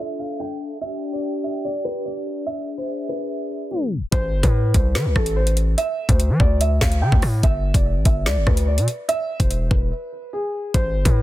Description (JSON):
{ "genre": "hip hop, drill", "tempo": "145 BPM", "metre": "4/4", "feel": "half-time", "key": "A minor", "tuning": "A4 = 436 Hz", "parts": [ { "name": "dark grand piano", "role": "melody", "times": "0.0-11.2 s", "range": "G#4 to G5", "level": "-26 LUFS", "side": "right 1 dB", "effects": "low-pass filter, digital delay" }, { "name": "mellow hollow large flute ensemble", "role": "sustained chords", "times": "0.0-4.1 s", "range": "D4 to G5", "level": "-28 LUFS", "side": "left 1 dB", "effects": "none" }, { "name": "distorted 808-style bass", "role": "bass", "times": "4.1-11.2 s", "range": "E1 to F3", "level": "-19 LUFS", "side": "equal", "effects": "distortion" }, { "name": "drill drum kit", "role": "drums", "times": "4.1-11.2 s", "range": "hi-hat, kick drum, rim click, snare drum", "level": "-20 LUFS", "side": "equal", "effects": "none" } ], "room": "small room ambience", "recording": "dense, heavily limited modern master, low-pass filter, tape stop", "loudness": "-18 LUFS", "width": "side -15 dB against mid", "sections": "0.0-4.1 A section; 4.1-11.2 B section", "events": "filter sweep 0.0-4.1; tape stop 3.7-4.1; break 9.9-10.7", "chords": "0.0 Dmadd9; 0.8 G5; 2.5 E7; 4.1 Am; 5.8 D5; 7.4 G5; 9.1 E", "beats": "0.40 | 0.81 1.23 1.64 2.05 | 2.47 2.88 3.30 3.71 | 4.12 4.54 4.95 5.37 | 5.78 6.19 6.61 7.02 | 7.43 7.85 8.26 8.68 | 9.09 9.50 9.92 10.33 | 10.74 11.16" }